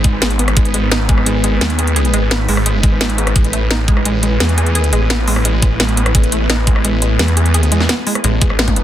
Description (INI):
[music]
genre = dark technical drum and bass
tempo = 172 BPM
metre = 4/4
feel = straight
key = unclear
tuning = A4 = 440 Hz
[part]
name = swarming drone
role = sustained chords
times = 0.0-8.8 s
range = G#3 to B4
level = -22 LUFS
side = equal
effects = built-in reverb, sidechain pumping
[part]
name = wide unison pluck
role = arpeggios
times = 0.0-8.8 s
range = G#3 to G#4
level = -22 LUFS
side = right 1 dB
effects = cassette tape, sidechain pumping, digital delay
[part]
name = snarling distorted saw bass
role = bass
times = 0.0-8.8 s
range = E1 to E2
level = -15 LUFS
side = equal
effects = distortion
[part]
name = drum and bass drum kit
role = drums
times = 0.0-8.8 s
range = hi-hat, rim click, snare drum, toms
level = -18 LUFS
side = equal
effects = none
[part]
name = electronic kick drum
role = drums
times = 0.0-8.7 s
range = none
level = -14 LUFS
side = equal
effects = none
[sound]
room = light reverb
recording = dense, heavily limited modern master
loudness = -12 LUFS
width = side -12 dB against mid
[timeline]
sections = 0.0-8.8 A section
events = drum fill 8.6; band accent 8.6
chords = 0.0 G#m; 3.4 Asus2